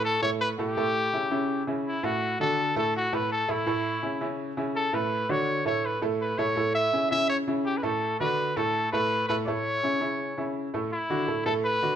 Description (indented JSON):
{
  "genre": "latin",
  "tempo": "165 BPM",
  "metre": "4/4",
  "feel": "straight",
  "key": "D major",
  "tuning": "A4 = 440 Hz",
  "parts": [
    { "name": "clear trumpet", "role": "melody", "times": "0.0-12.0 s", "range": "E4 to E5", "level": "-27 LUFS", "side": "left 1 dB", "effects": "none" },
    { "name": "clear grand piano", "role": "accompaniment", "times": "0.0-12.0 s", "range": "A2 to A4", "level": "-28 LUFS", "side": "right 2 dB", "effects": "none" }
  ],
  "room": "moderate large studio reverb, RT60 1.1 s",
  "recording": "close, detailed microphones",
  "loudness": "-25 LUFS",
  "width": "side -9 dB against mid",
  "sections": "0.0-10.9 A section; 10.9-12.0 B section",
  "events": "none",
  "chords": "0.0 N.C.; 0.8 A7; 2.2 D; 3.7 A; 5.1 D; 6.6 A; 8.0 D6; 9.5 A; 10.9 D69"
}